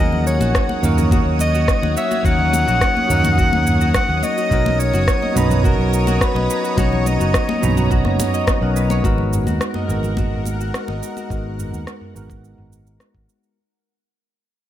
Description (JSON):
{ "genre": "sunset chillout", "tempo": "106 BPM", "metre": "4/4", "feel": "straight", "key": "G# minor", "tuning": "A4 = 440 Hz", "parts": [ { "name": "breathy soprano saxophone", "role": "melody", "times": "0.0-7.6 s", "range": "A#4 to F#5", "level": "-22 LUFS", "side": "equal", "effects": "ping-pong delay" }, { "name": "bell-like tine electric piano", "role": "accompaniment", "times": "0.0-13.6 s", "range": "F#3 to A#5", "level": "-23 LUFS", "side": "moving between left 6 dB and right 4 dB", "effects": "auto-pan, vintage 12-bit sampler grit, ping-pong delay" }, { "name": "lush unison pad", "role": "sustained chords", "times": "0.0-13.5 s", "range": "A#4 to D#6", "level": "-28 LUFS", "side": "right 2 dB", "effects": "chorus, phaser" }, { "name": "Celtic harp", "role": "arpeggios", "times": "0.0-13.6 s", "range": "F#4 to F#5", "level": "-27 LUFS", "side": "right 1 dB", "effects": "ping-pong delay" }, { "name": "fingered electric bass", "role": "bass", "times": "0.0-13.3 s", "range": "F#1 to D#2", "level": "-20 LUFS", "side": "equal", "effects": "tube saturation" }, { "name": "congas", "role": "percussion", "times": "0.1-11.3 s", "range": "none", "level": "-28 LUFS", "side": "left 3 dB", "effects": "none" }, { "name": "deep house drum kit", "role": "drums", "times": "0.3-13.5 s", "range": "rim click, shaker, toms", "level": "-24 LUFS", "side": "right 1 dB", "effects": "none" }, { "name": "electronic kick drum", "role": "drums", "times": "0.5-13.3 s", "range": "none", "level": "-20 LUFS", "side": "equal", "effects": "none" } ], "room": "light reverb, digital ambience", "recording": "none", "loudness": "-15 LUFS", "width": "side -12 dB against mid", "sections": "0.0-9.0 A section; 9.0-13.6 B section", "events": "fade-out 9.0-13.6", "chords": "0.0 D#m7; 4.5 Bmaj9; 9.0 G#m9" }